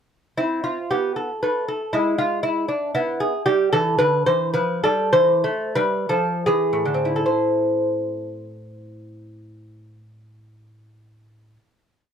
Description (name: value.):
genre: classical, baroque-style dance for lute.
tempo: 74-119 BPM.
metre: 3/4.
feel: rubato.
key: A minor.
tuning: A4 = 437 Hz.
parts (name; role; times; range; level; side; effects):
lute; solo; 0.4-12.1 s; A2 to C5; -19 LUFS; equal; none.
room: wet studio reverb, RT60 0.5 s.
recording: none.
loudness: -19 LUFS.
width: side -8 dB against mid.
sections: 0.4-7.3 A section; 7.3-12.1 final chord.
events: slowing down 2.7-7.3.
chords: 0.4 Am; 1.9 G#dim7; 3.5 Em; 4.5 F; 5.1 Am/E; 6.5 E7; 7.3 Am.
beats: | 0.38 0.92 1.43 | 1.95 2.45 2.96 | 3.47 4.00 4.55 | 5.13 5.76 6.47 | 7.26 8.07 8.87 | 9.65 10.46 11.25.